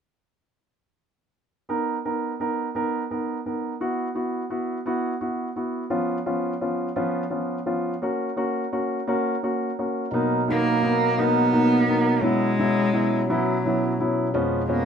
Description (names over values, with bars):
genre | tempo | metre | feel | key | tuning
six-eight pop ballad | 57 BPM (dotted quarters) | 6/8 | straight | B major | A4 = 440 Hz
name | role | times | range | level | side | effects
warm concert grand piano | accompaniment | 1.7-14.9 s | E#3 to A#4 | -24 LUFS | equal | none
tonewheel organ | sustained chords | 10.1-14.9 s | E#2 to A#4 | -24 LUFS | equal | stopped rotary speaker
rich cello | melody | 10.5-14.9 s | F#3 to B3 | -24 LUFS | equal | none
room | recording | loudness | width
wet small room reverb, RT60 0.5 s | rough home demo mix | -22 LUFS | side -7 dB against mid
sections
1.7-10.1 A section; 10.1-14.9 B section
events
none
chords
1.7 Bmaj7; 3.8 F#7sus4; 5.9 C#7/E#; 8.0 F#; 10.1 Bmaj7; 12.2 F#7sus4; 14.3 C#7/E#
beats
| 1.70 2.75 | 3.81 4.86 | 5.92 6.97 | 8.03 9.08 | 10.13 11.19 | 12.24 13.29 | 14.35